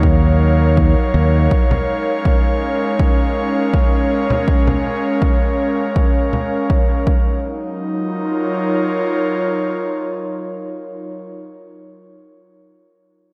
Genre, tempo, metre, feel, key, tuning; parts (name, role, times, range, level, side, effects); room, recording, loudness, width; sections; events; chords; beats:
ambient dub; 81 BPM; 4/4; swing 53% on 16ths; Eb minor; A4 = 441 Hz
airy breathy pad; sustained chords; 0.0-11.2 s; Gb3 to F5; -21 LUFS; equal; chorus
modern bright fingered electric bass; bass; 0.0-1.5 s; Eb2; -15 LUFS; equal; tube saturation
electronic kick drum; drums; 0.0-7.2 s; -18 LUFS; equal
congas; drums; 1.7-6.5 s; -25 LUFS; equal; dub echo
light reverb, digital ambience; dark, warm production; -17 LUFS; mono
0.0-7.4 A section; 7.4-10.4 B section
0.0 Ebm9; 1.5 Bbm7; 7.1 Ebm; 7.4 Ebm9
0.03 0.77 | 1.51 2.25 2.99 3.73 | 4.47 5.22 5.96 6.70 | 7.44 8.18 8.92 9.66